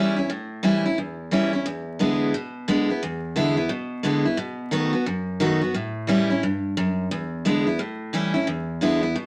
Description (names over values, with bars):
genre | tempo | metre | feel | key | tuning
rock | 176 BPM | 4/4 | swing 63% on 8ths | E mixolydian | A4 = 440 Hz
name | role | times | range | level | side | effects
picked steel-string acoustic guitar | solo | 0.0-9.3 s | E2 to F#4 | -24 LUFS | equal | none
room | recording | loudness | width
moderate studio reverb, RT60 0.7 s | vinyl crackle | -24 LUFS | mono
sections
0.0-9.3 A section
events
none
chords
0.0 A7; 1.7 E7; 4.4 B7; 5.7 A7; 7.1 E7; 7.8 A7; 8.5 E7